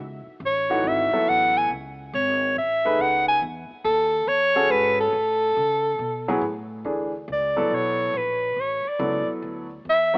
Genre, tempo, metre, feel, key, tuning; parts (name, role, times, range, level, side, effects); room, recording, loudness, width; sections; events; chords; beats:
jazz; 140 BPM; 4/4; swing 67% on 8ths; A lydian, D lydian from 6.9 s; A4 = 440 Hz
upright bass; bass; 0.0-10.2 s; G#1 to C#3; -36 LUFS; equal
breathy soprano saxophone; melody; 0.5-10.2 s; A4 to G#5; -20 LUFS; equal
warm concert grand piano; accompaniment; 0.7-10.2 s; E3 to B4; -26 LUFS; equal
light reverb, small room ambience; rough home demo mix, AM radio sound; -20 LUFS; side -34 dB against mid
0.0-6.9 A section; 6.9-10.2 B section
soprano saxophone solo 6.9-10.2
0.0 Amaj7; 6.9 Dmaj7
0.41 0.84 1.27 | 1.70 2.13 2.56 2.99 | 3.42 3.85 4.28 4.71 | 5.14 5.57 6.00 6.42 | 6.86 7.28 7.71 8.14 | 8.57 9.00 9.43 9.86